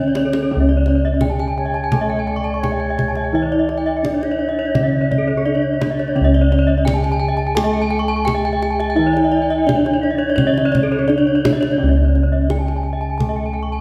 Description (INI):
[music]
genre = Balinese gamelan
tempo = 85 BPM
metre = 4/4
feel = straight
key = C# pelog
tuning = A4 = 438 Hz
[part]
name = gamelan-type bronze metallophone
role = melody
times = 0.0-13.8 s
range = C#4 to A4-40c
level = -23 LUFS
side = equal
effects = none
[part]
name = gamelan-type bronze metallophone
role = accompaniment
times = 0.0-13.8 s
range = C#3 to A3-40c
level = -27 LUFS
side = equal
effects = none
[part]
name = gamelan-type bronze metallophone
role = arpeggios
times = 0.0-13.6 s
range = A4-40c to C#6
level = -26 LUFS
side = equal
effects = none
[part]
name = gamelan-type bossed gongs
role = bass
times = 0.0-13.8 s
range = C#2 to E4-50c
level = -23 LUFS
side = equal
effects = none
[part]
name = gamelan-type bronze metallophone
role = arpeggios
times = 0.1-13.8 s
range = A4-40c to C#6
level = -27 LUFS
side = equal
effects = none
[part]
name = kendang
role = percussion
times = 0.2-13.4 s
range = none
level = -27 LUFS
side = equal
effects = none
[part]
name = bansuri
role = second line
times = 1.6-11.4 s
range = C#5 to G#5-43c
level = -28 LUFS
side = equal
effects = none
[sound]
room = wet scoring stage reverb, RT60 1.9 s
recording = recorded in a church or concert hall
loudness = -17 LUFS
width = mono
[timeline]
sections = 0.5-11.8 A section; 11.8-13.8 A section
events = drum fill 0.0-0.5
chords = none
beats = | 0.51 1.21 1.92 2.62 | 3.33 4.03 4.74 5.44 | 6.14 6.85 7.55 8.26 | 8.96 9.67 10.37 11.08 | 11.78 12.49 13.19